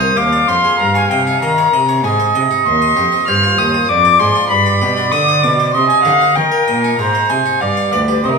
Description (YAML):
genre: classical, baroque-style sonata movement with continuo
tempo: 97 BPM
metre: 3/4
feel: straight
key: C minor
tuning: A4 = 444 Hz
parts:
  - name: dark violin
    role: melody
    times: 0.0-8.4 s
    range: Bb4 to F6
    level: -15 LUFS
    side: left 5 dB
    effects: none
  - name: warm oboe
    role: second line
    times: 0.0-8.4 s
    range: Bb4 to F5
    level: -16 LUFS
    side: right 6 dB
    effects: none
  - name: harpsichord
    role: accompaniment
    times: 0.0-8.4 s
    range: C2 to Eb5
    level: -20 LUFS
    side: left 1 dB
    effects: none
  - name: dark cello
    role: bass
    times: 0.0-8.3 s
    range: C2 to Eb3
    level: -20 LUFS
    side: right 2 dB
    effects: none
room: wet recital hall reverb, RT60 1.5 s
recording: minimal, uncompressed stereo recording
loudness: -11 LUFS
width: side -4 dB against mid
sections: 0.0-8.4 A section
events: none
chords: 0.0 Ab; 0.8 Eb7/G; 2.0 Ab; 2.7 Cm/Eb; 3.9 Ddim/F; 4.5 G; 5.7 Cm; 6.4 Eb; 7.0 Ab; 7.6 G7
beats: 0.17 | 0.80 1.43 2.04 | 2.66 3.28 3.89 | 4.51 5.13 5.74 | 6.36 6.99 7.61 | 8.24